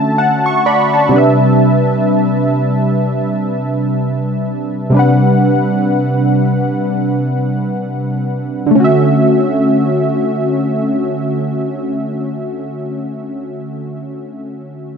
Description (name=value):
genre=R&B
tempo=free time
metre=none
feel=none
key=D major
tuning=A4 = 436 Hz
part: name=warm analog keys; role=accompaniment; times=0.0-15.0 s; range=C3 to C#6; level=-13 LUFS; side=equal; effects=chorus
room=moderate plate reverb, RT60 2.7 s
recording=dark, warm production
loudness=-12 LUFS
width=side -6 dB against mid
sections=0.0-8.7 A section; 8.7-12.6 B section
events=synth keys fill 0.0-1.1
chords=0.0 Dmaj9; 1.1 Cmaj9; 8.7 Dmaj9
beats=free time